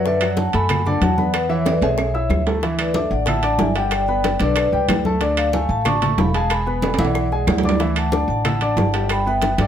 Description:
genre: latin, salsa.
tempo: 186 BPM.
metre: 4/4.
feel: straight.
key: unclear.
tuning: A4 = 441 Hz.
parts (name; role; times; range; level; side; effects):
vibraphone with soft mallets; melody; 0.0-9.7 s; A4 to C#6; -22 LUFS; equal; none.
clear grand piano; accompaniment; 0.0-9.7 s; D3 to E6; -23 LUFS; left 2 dB; none.
upright bass; bass; 0.0-9.7 s; E1 to G2; -22 LUFS; equal; none.
congas; percussion; 0.0-9.7 s; none; -25 LUFS; equal; none.
bongos; percussion; 0.1-9.6 s; none; -30 LUFS; left 7 dB; none.
claves; percussion; 0.2-9.3 s; none; -33 LUFS; right 2 dB; none.
timbales; percussion; 0.2-9.7 s; none; -25 LUFS; right 6 dB; none.
room: moderate studio reverb, RT60 0.8 s.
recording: none.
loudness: -16 LUFS.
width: side -9 dB against mid.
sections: 0.0-2.6 A section; 2.6-9.7 B section.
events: drum fill 1.7-2.6, 6.8-7.8.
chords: 0.1 Bm7/F#; 1.3 E; 2.6 Dadd9; 3.9 G; 5.2 Dm; 6.5 E; 7.8 Dsus2; 9.1 G.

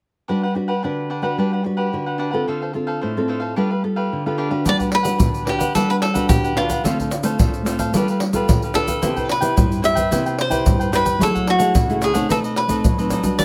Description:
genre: samba and choro.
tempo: 110 BPM.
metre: 4/4.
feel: straight.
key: G major.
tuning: A4 = 436 Hz.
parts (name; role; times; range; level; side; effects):
cavaquinho; accompaniment; 0.3-13.4 s; D4 to G5; -27 LUFS; equal; none.
nylon-string guitar; accompaniment; 0.3-13.4 s; G2 to B4; -24 LUFS; equal; none.
cavaquinho; melody; 4.7-13.4 s; F4 to E5; -24 LUFS; equal; none.
tube shaker, surdo and pandeiro; percussion; 4.7-13.4 s; none; -23 LUFS; equal; none.
room: light reverb.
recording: close, detailed microphones.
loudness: -20 LUFS.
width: mono.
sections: 0.3-4.7 A section; 4.7-13.4 B section.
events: none.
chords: 0.3 Gmaj7; 2.5 Dm7; 3.6 G9; 4.7 Gmaj7; 6.8 Dm7; 7.9 G9; 9.0 Cmaj7; 11.2 F#m9; 12.3 B7b9.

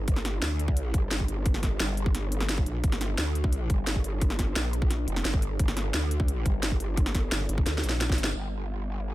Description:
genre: dark technical drum and bass.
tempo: 174 BPM.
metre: 4/4.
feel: straight.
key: G minor.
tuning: A4 = 445 Hz.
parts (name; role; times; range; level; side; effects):
growl bass; bass; 0.0-9.1 s; F1 to D2; -29 LUFS; equal; chorus, tube saturation.
drum and bass drum kit; drums; 0.1-8.4 s; crash cymbal, hi-hat, snare drum; -31 LUFS; equal; low-pass filter on hats, low-pass filter on snare, low-pass filter on cymbals.
electronic kick drum; drums; 0.1-8.2 s; none; -26 LUFS; equal; none.
room: little or no reverb.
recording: none.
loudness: -25 LUFS.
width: side -16 dB against mid.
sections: 0.0-8.4 A section.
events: drum fill 7.7-8.4; band accent 8.2.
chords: none.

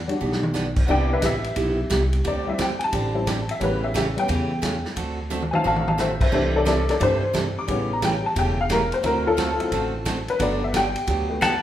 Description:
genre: country, western swing.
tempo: 177 BPM.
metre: 4/4.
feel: swing 65% on 8ths.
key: unclear.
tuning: A4 = 440 Hz.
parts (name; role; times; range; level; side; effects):
honky-tonk upright piano; accompaniment; 0.0-11.6 s; E3 to D6; -23 LUFS; left 2 dB; none.
upright bass; bass; 0.0-11.6 s; E1 to G2; -27 LUFS; equal; none.
vintage drum kit; drums; 0.1-11.5 s; crash cymbal, hi-hat, kick drum, ride cymbal, snare drum, toms; -28 LUFS; equal; none.
picked steel-string acoustic guitar; accompaniment; 0.2-11.5 s; C3 to A4; -27 LUFS; right 3 dB; none.
pedal steel guitar; melody; 11.4-11.6 s; F#5 to A5; -19 LUFS; left 2 dB; none.
room: wet large studio reverb, RT60 1.0 s.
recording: band playing live in one room.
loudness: -20 LUFS.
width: side -12 dB against mid.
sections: 0.0-11.6 A section.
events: honky-tonk piano solo 0.0-11.6; drum fill 0.2-0.5, 5.3-6.0.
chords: 0.0 Em7; 0.9 Cmaj7; 2.2 D7sus4; 3.6 A7; 5.0 D7; 6.3 C6; 7.7 A7; 9.0 D7; 10.4 Gmaj7.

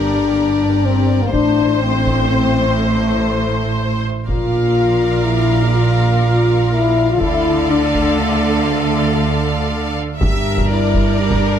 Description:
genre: cinematic, epic orchestral film score.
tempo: 122 BPM.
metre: 3/4.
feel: straight.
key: G dorian.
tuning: A4 = 443 Hz.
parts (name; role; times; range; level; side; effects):
clear studio violin section; melody; 0.0-11.6 s; C5 to F5; -26 LUFS; left 1 dB; none.
clear studio violin section; second line; 0.0-11.6 s; D4 to D5; -28 LUFS; left 2 dB; none.
rich studio viola section; accompaniment; 0.0-11.6 s; G3 to C5; -24 LUFS; right 1 dB; none.
warm French horn section; sustained chords; 0.0-11.6 s; A3 to G4; -18 LUFS; left 4 dB; none.
clear symphonic double bass section; bass; 0.0-11.6 s; G1 to D2; -20 LUFS; right 3 dB; none.
rich symphonic cello section; bass; 0.0-11.6 s; G2 to D3; -20 LUFS; right 3 dB; none.
taiko ensemble; drums; 1.3-11.6 s; none; -21 LUFS; equal; none.
room: moderate scoring stage reverb, RT60 1.8 s.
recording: none.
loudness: -13 LUFS.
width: side -9 dB against mid.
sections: 0.0-10.2 A section; 10.2-11.6 A section.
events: none.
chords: 0.0 Gm; 1.3 Am; 4.3 Bb; 7.2 Dm; 10.2 Gm.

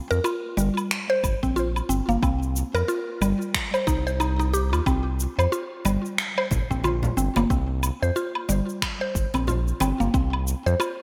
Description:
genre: organic downtempo.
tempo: 91 BPM.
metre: 4/4.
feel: swing 59% on 16ths.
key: C minor.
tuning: A4 = 441 Hz.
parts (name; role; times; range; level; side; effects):
mallet-like synth pluck; arpeggios; 0.0-10.9 s; G3 to C5; -28 LUFS; equal; chorus, phaser, digital delay.
round analog bass; bass; 0.1-10.7 s; G1 to F2; -28 LUFS; equal; sidechain pumping.
electronic shaker, woodblock and finger snaps; drums; 0.1-11.0 s; none; -32 LUFS; equal; gated reverb.
electronic kick drum; drums; 1.2-10.3 s; none; -29 LUFS; equal; none.
congas; percussion; 5.8-10.0 s; none; -34 LUFS; equal; none.
room: moderate plate reverb, RT60 2.7 s.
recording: bright 1980s-style digital production.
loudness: -24 LUFS.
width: mono.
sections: 0.0-11.0 A section.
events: none.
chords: 0.0 C7(no3).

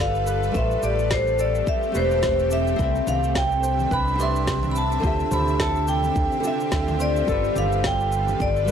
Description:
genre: sunset chillout.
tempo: 107 BPM.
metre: 4/4.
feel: swing 58% on 16ths.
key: A minor.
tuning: A4 = 442 Hz.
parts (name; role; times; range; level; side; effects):
vibraphone with hard mallets; melody; 0.0-8.7 s; C5 to C6; -24 LUFS; left 1 dB; tape echo.
nylon-string guitar; accompaniment; 0.0-8.7 s; D3 to B5; -29 LUFS; moving between left 2 dB and right 6 dB; auto-pan.
shimmering ambient pad; sustained chords; 0.0-8.7 s; C3 to E5; -30 LUFS; equal; chorus, built-in reverb.
concert harp; arpeggios; 0.0-8.7 s; G4 to C5; -35 LUFS; left 1 dB; tape echo.
fretless electric bass; bass; 0.0-8.7 s; E1 to D2; -25 LUFS; equal; analog chorus.
electronic shaker and snare drum; drums; 0.1-8.7 s; none; -30 LUFS; equal; none.
electronic kick drum; drums; 0.6-8.5 s; none; -28 LUFS; equal; none.
congas; percussion; 3.1-8.4 s; none; -34 LUFS; left 2 dB; none.
room: small room ambience.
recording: dry, gritty hardware recording, transformer saturation.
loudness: -20 LUFS.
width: side -8 dB against mid.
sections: 0.0-8.7 A section.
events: none.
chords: 0.0 G9; 0.5 Am11; 2.8 Cmaj9; 5.0 Dm11; 7.3 G9.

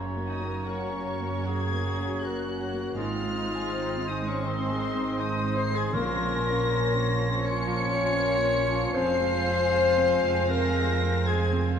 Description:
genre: cinematic, emotional film score for orchestra.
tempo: 80 BPM.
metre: 4/4.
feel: rubato.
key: Bb minor.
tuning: A4 = 445 Hz.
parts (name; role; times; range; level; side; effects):
mellow concert flute; second line; 0.0-11.7 s; Ab5 to C6; -37 LUFS; left 2 dB; none.
rich studio violin section; second line; 0.0-11.8 s; Ab3 to F5; -37 LUFS; left 1 dB; none.
warm oboe; second line; 0.0-11.8 s; C5 to Eb5; -38 LUFS; right 2 dB; none.
clear concert grand piano; accompaniment; 0.0-11.8 s; F2 to C5; -34 LUFS; equal; none.
dark symphonic viola section; accompaniment; 0.0-11.8 s; Bb3 to Gb4; -36 LUFS; right 1 dB; none.
dark chamber cello section; bass; 0.0-11.8 s; F2 to Bb2; -33 LUFS; right 3 dB; none.
dark symphonic double bass section; bass; 0.0-11.8 s; F1 to Bb1; -33 LUFS; right 4 dB; none.
dark studio violin section; melody; 0.3-11.7 s; C6 to Db7; -34 LUFS; left 1 dB; none.
bright clarinet; second line; 0.3-11.7 s; C4 to Db5; -34 LUFS; left 2 dB; none.
dark French horn section; sustained chords; 0.3-11.7 s; C4 to C5; -30 LUFS; left 4 dB; none.
timpani; percussion; 5.9-7.0 s; Bb2; -36 LUFS; right 1 dB; none.
room: wet concert hall reverb, RT60 2.1 s.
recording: none.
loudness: -24 LUFS.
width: side -8 dB against mid.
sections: 0.0-11.8 A section.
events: none.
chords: 0.0 Gb; 3.0 Ab; 5.9 Bbmadd9; 8.9 Fm.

